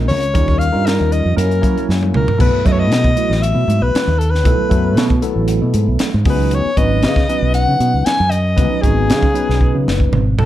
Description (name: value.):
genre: electric jazz fusion.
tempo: 117 BPM.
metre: 4/4.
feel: straight.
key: B mixolydian.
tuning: A4 = 440 Hz.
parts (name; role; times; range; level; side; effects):
barky tine electric piano; accompaniment; 0.0-10.2 s; Gb3 to Db5; -20 LUFS; right 1 dB; slow stereo tremolo, analog chorus.
fingered electric bass; bass; 0.0-10.5 s; F#1 to Gb3; -16 LUFS; equal; none.
clear soprano saxophone; melody; 0.1-10.5 s; G#4 to G#5; -19 LUFS; left 2 dB; slapback echo.
crisp fusion drum kit; drums; 0.1-10.5 s; crash cymbal, hi-hat, kick drum, snare drum, toms; -18 LUFS; equal; none.
room: light reverb.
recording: dark, warm production.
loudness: -13 LUFS.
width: side -13 dB against mid.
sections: 0.0-2.4 A section; 2.4-10.5 B section.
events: drum fill 1.9-2.4, 9.6-10.5.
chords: 0.3 Eb9; 1.4 Gb7; 2.4 B7sus4; 6.3 C#9sus4.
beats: | 0.35 0.86 1.38 1.89 | 2.40 2.92 3.43 3.94 | 4.46 4.97 5.48 6.00 | 6.51 7.03 7.54 8.05 | 8.57 9.08 9.60 10.12.